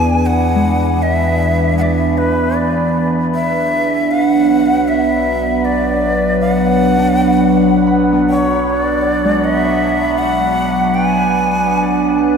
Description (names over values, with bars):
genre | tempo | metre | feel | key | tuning
ambient | 79 BPM | 4/4 | straight | B dorian | A4 = 440 Hz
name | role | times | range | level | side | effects
breathy bright shakuhachi | melody | 0.0-12.2 s | B4 to G#5 | -17 LUFS | equal | analog delay
evolving wavetable pad | sustained chords | 0.0-12.4 s | E3 to F#5 | -14 LUFS | right 1 dB | phaser, built-in reverb
concert harp | arpeggios | 0.0-12.4 s | G#3 to B5 | -25 LUFS | left 3 dB | analog delay
deep rumbling drone | bass | 0.0-12.4 s | B1 to E2 | -24 LUFS | left 1 dB | built-in reverb, tube saturation
room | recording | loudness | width
wet lush hall reverb, RT60 2.9 s | dreamy mix soaked in reverb | -12 LUFS | side -6 dB against mid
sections
0.0-12.4 A section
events
fade-out on harp 0.0-12.4; fade-out on synth drone 0.0-12.4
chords
0.0 E7; 3.4 Bm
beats
| 0.28 1.04 1.80 2.58 | 3.35 4.13 4.90 5.66 | 6.42 7.18 7.94 8.70 | 9.44 10.19 10.95 11.70